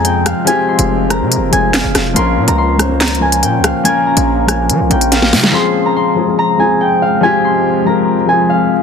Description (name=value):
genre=hip hop, drill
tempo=142 BPM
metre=4/4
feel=half-time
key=F minor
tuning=A4 = 440 Hz
part: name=concert harp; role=melody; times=0.0-8.8 s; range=F5 to C6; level=-15 LUFS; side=equal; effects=none
part: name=dark grand piano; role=accompaniment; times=0.0-8.8 s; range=F3 to C5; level=-16 LUFS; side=left 5 dB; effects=none
part: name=deep dark ambient pad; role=sustained chords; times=0.0-8.8 s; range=F3 to Db4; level=-19 LUFS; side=right 1 dB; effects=chorus, built-in reverb
part: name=distorted 808-style bass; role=bass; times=0.0-5.5 s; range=E1 to F3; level=-17 LUFS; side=right 1 dB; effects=distortion
part: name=drill drum kit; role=drums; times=0.0-5.5 s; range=handclaps, hi-hat, rim click, snare drum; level=-14 LUFS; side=equal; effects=none
room=light reverb, digital ambience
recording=dense, heavily limited modern master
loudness=-10 LUFS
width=side -6 dB against mid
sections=0.0-5.5 A section; 5.5-8.8 A section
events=drum fill 5.1-5.5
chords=0.0 Fm; 2.2 Bbm; 5.5 Fm